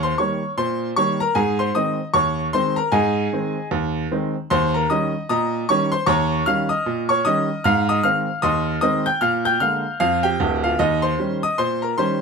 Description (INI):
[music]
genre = ragtime piano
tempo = 76 BPM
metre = 2/4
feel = swing 58% on 16ths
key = Ab major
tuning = A4 = 440 Hz
[part]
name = clear upright piano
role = solo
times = 0.0-12.2 s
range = D1 to G6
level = -18 LUFS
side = equal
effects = none
[sound]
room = light reverb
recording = close, detailed microphones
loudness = -18 LUFS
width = side -5 dB against mid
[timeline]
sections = 0.0-12.2 A section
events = none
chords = 0.0 Eb7; 1.4 Ab; 4.5 Eb7; 7.7 Ab; 9.2 Bb7; 10.8 Eb7